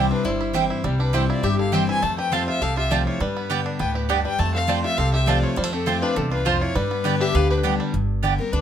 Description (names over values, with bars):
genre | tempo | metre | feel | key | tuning
bluegrass | 203 BPM | 4/4 | straight | G mixolydian | A4 = 440 Hz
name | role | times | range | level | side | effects
bluegrass banjo | melody | 0.0-7.9 s | G3 to G4 | -30 LUFS | right 5 dB | none
dark fiddle | melody | 0.0-8.6 s | G4 to A5 | -26 LUFS | left 3 dB | none
lap resonator guitar | second line | 0.0-8.6 s | C4 to C5 | -29 LUFS | left 4 dB | none
picked steel-string acoustic guitar | accompaniment | 0.0-8.6 s | E2 to G4 | -25 LUFS | left 2 dB | none
mandolin | stabs | 0.0-8.3 s | B3 to A5 | -25 LUFS | right 8 dB | none
upright bass | bass | 0.0-8.6 s | G1 to G2 | -25 LUFS | right 1 dB | none
room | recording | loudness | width
moderate small room reverb, RT60 0.6 s | none | -19 LUFS | side -9 dB against mid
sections
0.0-7.9 A section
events
none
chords
0.0 C; 2.0 F; 3.2 G; 4.4 F; 6.8 G